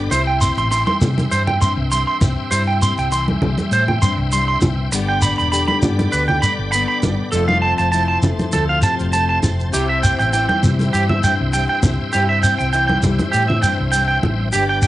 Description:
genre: highlife guitar band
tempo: 100 BPM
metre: 4/4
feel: swing 54% on 16ths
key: C major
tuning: A4 = 441 Hz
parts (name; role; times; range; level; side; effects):
- nylon-string guitar; accompaniment; 0.0-14.9 s; F2 to G4; -24 LUFS; left 5 dB; cassette tape
- bright tonewheel organ; sustained chords; 0.0-14.9 s; B4 to C6; -29 LUFS; left 1 dB; slow rotary speaker, chorus vibrato, cassette tape
- hollow-body short-scale fingered electric bass; bass; 0.0-14.9 s; E1 to C3; -21 LUFS; equal; none
- electric guitar at the edge of break-up; arpeggios; 0.1-14.9 s; G4 to C6; -19 LUFS; right 3 dB; cassette tape, analog delay
- shekere; percussion; 0.1-14.9 s; none; -22 LUFS; equal; none
- congas; percussion; 0.9-14.4 s; none; -21 LUFS; right 1 dB; none
room: moderate studio reverb, RT60 0.6 s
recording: home recording on cassette, nothing above 10.5 kHz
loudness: -15 LUFS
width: side -15 dB against mid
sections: 0.1-14.9 A section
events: none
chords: 0.1 C; 4.9 G; 7.3 F; 9.7 C

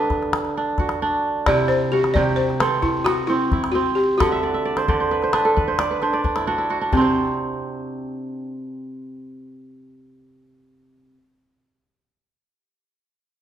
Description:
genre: west african traditional, West African string and xylophone music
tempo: 88 BPM (dotted quarters)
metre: 12/8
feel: straight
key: C lydian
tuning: A4 = 440 Hz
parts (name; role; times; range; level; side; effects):
- balafon; melody; 0.0-11.1 s; C4 to D5; -21 LUFS; left 2 dB; none
- kora; arpeggios; 0.0-11.2 s; C3 to F#5; -21 LUFS; right 2 dB; none
- calabash; percussion; 0.1-7.1 s; none; -25 LUFS; left 2 dB; none
room: wet recital hall reverb, RT60 1.4 s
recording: recorded in a church or concert hall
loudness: -18 LUFS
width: side -10 dB against mid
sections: 0.0-6.9 A section; 6.9-9.6 B section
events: kora fill 4.2-6.9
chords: 0.0 D; 1.5 C; 4.2 N.C.

